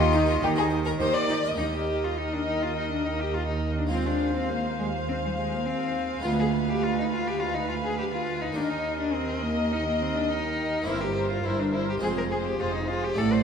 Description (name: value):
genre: classical, baroque-style concerto movement with solo episodes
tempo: 103 BPM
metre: 4/4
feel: straight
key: Eb major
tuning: A4 = 442 Hz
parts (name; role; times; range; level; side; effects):
- clear cello; melody; 0.0-13.4 s; Eb3 to C5; -30 LUFS; left 2 dB; none
- rich chamber violin section; melody; 0.0-13.4 s; Eb5 to Ab5; -40 LUFS; left 3 dB; none
- rich chamber violin section; second line; 0.0-13.4 s; Eb4 to F5; -31 LUFS; left 4 dB; none
- harpsichord; accompaniment; 0.0-13.4 s; D2 to C5; -32 LUFS; right 4 dB; none
- clear symphonic double bass section; bass; 0.0-13.4 s; F1 to Eb2; -32 LUFS; right 4 dB; none
- rich studio cello section; bass; 0.0-13.4 s; D2 to Eb3; -35 LUFS; right 3 dB; none
- rich chamber viola section; accompaniment; 0.1-13.4 s; Eb4 to C5; -34 LUFS; right 2 dB; none
room: wet recital hall reverb, RT60 1.5 s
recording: dark, warm production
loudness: -24 LUFS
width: side -7 dB against mid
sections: 0.0-1.6 A section; 1.6-13.4 B section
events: none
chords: 0.0 Eb; 3.9 Fm7/Eb; 6.2 Ddim7; 8.6 Eb; 10.9 C7/G; 12.0 Fm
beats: 0.41 1.00 | 1.59 2.17 2.76 3.34 | 3.92 4.50 5.08 5.66 | 6.24 6.82 7.40 7.98 | 8.56 9.14 9.72 10.29 | 10.87 11.44 12.02 12.60 | 13.18